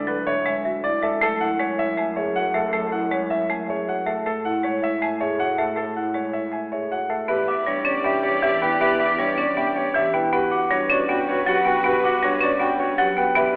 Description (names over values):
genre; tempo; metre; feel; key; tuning
classical, minimalist pattern music; 158 BPM; 4/4; straight; E dorian from 7.3 s; A4 = 440 Hz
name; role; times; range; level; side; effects
clear grand piano; melody; 0.0-13.6 s; A4 to G#5; -26 LUFS; equal; none
marimba with soft mallets; arpeggios; 0.0-13.6 s; D4 to C#5; -30 LUFS; equal; none
warm double bass; bass; 0.0-13.6 s; D2 to A2; -38 LUFS; equal; none
marimba with hard mallets; accompaniment; 0.1-13.6 s; E3 to C#4; -30 LUFS; equal; none
celesta; arpeggios; 0.3-13.6 s; E5 to D6; -30 LUFS; equal; none
clear clarinet; second line; 7.3-13.5 s; F#4 to G4; -29 LUFS; equal; none
warm studio string section; sustained chords; 7.3-13.6 s; F#4 to D5; -33 LUFS; equal; none
room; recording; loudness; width
moderate scoring stage reverb, RT60 1.6 s; telephone sound; -22 LUFS; mono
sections
0.0-7.3 A section; 7.3-13.6 B section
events
none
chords
0.0 Dmaj9#11; 1.2 F#m7; 4.3 Amaj7; 7.3 Em7; 10.3 Gmaj7